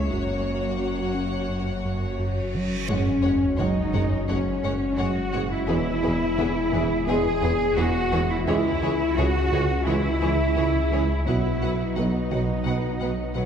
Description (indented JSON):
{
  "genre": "cinematic, hybrid orchestral and electronic film score",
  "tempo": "86 BPM",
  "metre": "4/4",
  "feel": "straight",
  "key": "unclear",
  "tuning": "A4 = 440 Hz",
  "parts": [
    { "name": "rich symphonic violin section", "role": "melody", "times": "0.0-13.4 s", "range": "B4 to F#5", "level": "-38 LUFS", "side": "left 4 dB", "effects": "none" },
    { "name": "rich chamber violin section", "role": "second line", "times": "0.0-13.4 s", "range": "G#4 to C#5", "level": "-36 LUFS", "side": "left 4 dB", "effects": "none" },
    { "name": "clear symphonic viola section", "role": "accompaniment", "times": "0.0-13.4 s", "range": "E3 to F#4", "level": "-34 LUFS", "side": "right 1 dB", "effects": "none" },
    { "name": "hollow soft pad", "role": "sustained chords", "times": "0.0-13.5 s", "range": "F#3 to C#5", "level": "-34 LUFS", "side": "left 2 dB", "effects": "chorus" },
    { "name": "mellow French horn section", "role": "sustained chords", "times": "0.0-13.5 s", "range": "C#4 to C#5", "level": "-29 LUFS", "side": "left 2 dB", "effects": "none" },
    { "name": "clear studio double bass section", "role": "bass", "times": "0.0-13.4 s", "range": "B1 to F#2", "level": "-31 LUFS", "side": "right 1 dB", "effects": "none" },
    { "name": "pure sine sub bass", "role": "bass", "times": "0.0-13.5 s", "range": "E1 to C#2", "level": "-32 LUFS", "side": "left 1 dB", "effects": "none" },
    { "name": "rich symphonic cello section", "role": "bass", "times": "0.0-13.5 s", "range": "G#3 to G#4", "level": "-28 LUFS", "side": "right 1 dB", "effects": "none" },
    { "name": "smooth gliding synth bass", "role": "riff", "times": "0.1-13.5 s", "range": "C#2 to B3", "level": "-29 LUFS", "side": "right 1 dB", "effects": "none" },
    { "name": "reverse cymbal and sub drop", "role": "sound effects", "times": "2.3-5.7 s", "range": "none", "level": "-34 LUFS", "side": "equal", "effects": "none" },
    { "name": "mellow trombone section", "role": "sustained chords", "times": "2.9-12.9 s", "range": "E3 to B3", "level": "-34 LUFS", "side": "right 2 dB", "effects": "none" },
    { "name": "mellow tuba", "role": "bass", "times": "2.9-13.5 s", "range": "E1 to C#2", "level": "-31 LUFS", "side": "right 2 dB", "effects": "none" }
  ],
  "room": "wet scoring stage reverb, RT60 1.7 s",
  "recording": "heard from further back in the room",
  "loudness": "-21 LUFS",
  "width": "side -8 dB against mid",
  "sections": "0.0-2.9 A section; 2.9-13.5 B section",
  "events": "reverse cymbal 2.3-2.9; impact 2.9-5.7",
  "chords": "0.1 F#; 2.9 F#sus2; 5.7 E; 8.5 C#m; 11.3 B"
}